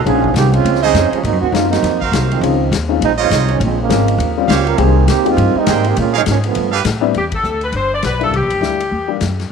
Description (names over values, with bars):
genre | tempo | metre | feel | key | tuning
jazz, big band swing | 203 BPM | 4/4 | swing 60% on 8ths | Ab major | A4 = 439 Hz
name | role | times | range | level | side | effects
bright trumpet section | stabs | 0.0-6.8 s | F4 to G5 | -21 LUFS | right 9 dB | none
upright bass | bass | 0.0-9.5 s | G1 to Bb2 | -17 LUFS | left 1 dB | none
clear trombone section | second line | 0.1-6.7 s | C3 to Bb4 | -16 LUFS | right 10 dB | none
warm baby grand piano | accompaniment | 0.1-9.2 s | Gb3 to G4 | -20 LUFS | left 15 dB | none
vintage drum kit | drums | 0.1-9.5 s | hi-hat, kick drum, ride cymbal, snare drum | -23 LUFS | left 7 dB | none
bright saxophone section | melody | 7.2-9.2 s | G4 to D5 | -18 LUFS | left 3 dB | slapback echo
room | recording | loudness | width
moderate spring reverb, RT60 2.3 s | 1960s-style stereo with parts hard left and right | -12 LUFS | side -6 dB against mid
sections
0.0-7.1 A section; 7.1-9.5 B section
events
trombone section solo 0.0-7.1; band accent 7.3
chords
0.1 Bbm11; 1.2 Ab13 (rootless); 2.4 Dbmaj9; 3.6 Bbm7; 4.2 Eb13; 4.8 Abmaj9; 6.0 Bbm7; 6.6 G9; 7.1 G69; 8.3 C7 (rootless)